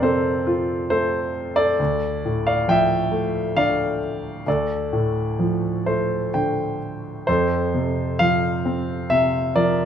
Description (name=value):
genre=classical, lyrical solo piano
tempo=62-69 BPM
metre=3/4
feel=rubato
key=unclear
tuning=A4 = 440 Hz
part: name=warm grand piano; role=solo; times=0.0-9.9 s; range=D2 to G5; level=-19 LUFS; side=equal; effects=none
room=moderate recital hall reverb, RT60 1.2 s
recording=minimal, uncompressed stereo recording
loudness=-19 LUFS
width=side -8 dB against mid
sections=0.0-7.3 A section; 7.3-9.9 B section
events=grand piano fill 5.4-7.3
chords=0.0 F; 1.8 Dmadd9; 4.5 Dm; 7.3 F